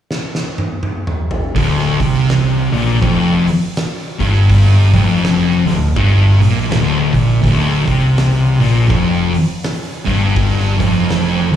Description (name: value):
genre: stoner and doom metal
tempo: 82 BPM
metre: 4/4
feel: swing 60% on 8ths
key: D minor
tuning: A4 = 440 Hz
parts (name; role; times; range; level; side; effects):
- oversized low-tuned drum kit; drums; 0.1-11.6 s; hi-hat, kick drum, snare drum, toms; -21 LUFS; equal; none
- thick fuzz guitar; riff; 1.6-11.6 s; D2 to C3; -15 LUFS; left 5 dB; distortion
- thick fuzz guitar; riff; 1.6-11.6 s; D2 to C3; -15 LUFS; right 5 dB; distortion
- fuzz fingered electric bass; bass; 1.6-11.6 s; D1 to C2; -21 LUFS; equal; overdrive
room: light reverb, studio reverb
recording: live gig heard through the venue's PA, club reverb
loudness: -12 LUFS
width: side -10 dB against mid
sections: 0.0-1.6 A section; 1.6-11.6 B section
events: drum fill 0.1-1.6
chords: 0.0 N.C.; 1.6 Dm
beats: 0.09 0.83 | 1.56 2.29 3.03 3.76 | 4.49 5.23 5.96 6.69 | 7.43 8.16 8.89 9.62 | 10.36 11.09